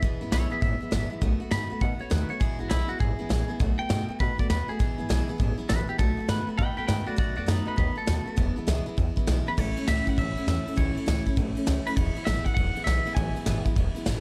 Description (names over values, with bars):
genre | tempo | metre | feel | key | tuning
rockabilly | 201 BPM | 4/4 | swing 64% on 8ths | E major | A4 = 437 Hz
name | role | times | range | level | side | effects
clean electric guitar | melody | 0.0-13.7 s | D#4 to B5 | -35 LUFS | equal | spring reverb, tape echo
picked steel-string acoustic guitar | accompaniment | 0.0-14.2 s | E2 to F#4 | -34 LUFS | equal | none
upright bass | bass | 0.0-14.2 s | E1 to B2 | -31 LUFS | equal | none
soft brush drum kit | drums | 0.0-14.1 s | crash cymbal, hi-hat, kick drum, ride cymbal, snare drum | -30 LUFS | equal | none
room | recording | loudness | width
little or no reverb | none | -27 LUFS | mono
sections
0.0-9.6 A section; 9.6-14.2 B section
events
clean electric guitar solo 0.0-9.6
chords
0.0 E; 1.2 B7; 2.4 E; 3.6 B7; 4.8 E; 6.0 B7; 8.4 E; 9.6 A; 12.0 E